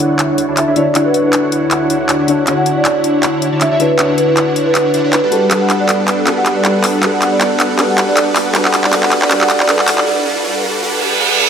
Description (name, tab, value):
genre	future bass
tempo	158 BPM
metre	4/4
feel	swing 55% on 16ths, half-time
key	D major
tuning	A4 = 440 Hz
part	felt-muted upright piano	accompaniment	0.0-11.5 s	D3 to C#5	-21 LUFS	left 4 dB	none
part	ethereal airy pad	sustained chords	0.0-10.1 s	D2 to A4	-26 LUFS	right 1 dB	ensemble chorus, built-in reverb
part	supersaw chords	riff	0.0-11.5 s	D3 to A5	-16 LUFS	equal	low-pass filter
part	trap drum kit	drums	0.0-10.0 s	handclaps, hi-hat	-16 LUFS	equal	none
part	marimba with soft mallets	melody	0.6-10.1 s	B4 to F#5	-17 LUFS	right 2 dB	low-pass filter, dub echo
part	riser and reverse cymbal	sound effects	9.6-11.5 s	none	-20 LUFS	right 5 dB	none
room	moderate lush hall reverb, RT60 1.9 s, digital ambience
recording	high-pass filter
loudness	-11 LUFS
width	side -7 dB against mid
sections	0.0-11.5 A section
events	build-up 0.0-11.5; drum fill 0.0-10.1; filter sweep on supersaw synth 0.0-11.5; filter sweep on marimba 0.0-11.5; filter sweep 0.0-11.5; riser 9.6-11.5; break 10.1-11.5; reverse cymbal 10.8-11.5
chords	0.0 Dmaj9; 5.3 Gmaj9; 8.5 Em9